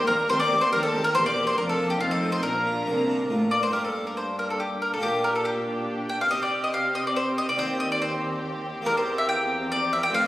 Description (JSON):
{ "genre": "classical, baroque-style concerto movement with solo episodes", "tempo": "140 BPM", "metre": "3/4", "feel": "straight", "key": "Bb major, G minor from 3.7 s", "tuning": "A4 = 440 Hz", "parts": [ { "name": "bowl-back mandolin", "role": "melody", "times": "0.0-10.2 s", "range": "F4 to G5", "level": "-24 LUFS", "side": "left 1 dB", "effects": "none" }, { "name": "rich chamber violin section", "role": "melody", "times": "0.0-10.3 s", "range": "F5 to D6", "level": "-38 LUFS", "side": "equal", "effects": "none" }, { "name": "rich chamber violin section", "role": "second line", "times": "0.0-10.3 s", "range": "D4 to Bb4", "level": "-34 LUFS", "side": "equal", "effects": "none" }, { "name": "harpsichord", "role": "accompaniment", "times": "0.0-10.3 s", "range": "Eb2 to C5", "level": "-32 LUFS", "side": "equal", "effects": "none" }, { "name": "rich chamber viola section", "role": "accompaniment", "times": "0.0-10.3 s", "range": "Bb3 to D4", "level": "-32 LUFS", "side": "right 1 dB", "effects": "none" }, { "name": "rich chamber double bass section", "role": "bass", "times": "0.1-3.7 s", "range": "E1 to Eb2", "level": "-38 LUFS", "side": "equal", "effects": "none" }, { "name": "warm studio cello section", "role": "bass", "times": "0.1-10.3 s", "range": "Eb2 to C3", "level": "-34 LUFS", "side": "right 1 dB", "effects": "none" } ], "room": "moderate recital hall reverb, RT60 1.8 s", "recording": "recorded on a phone in the room, studio reverb", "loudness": "-22 LUFS", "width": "side -16 dB against mid", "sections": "0.0-3.7 A section; 3.7-10.3 B section", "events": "none", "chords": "0.0 Cm7/Eb; 1.1 C7/E; 1.6 Bb/F; 2.0 F7; 2.4 Bb; 3.7 Gm; 5.0 Gm/Bb; 6.3 C5; 7.6 Cm/Eb; 8.9 C7/E" }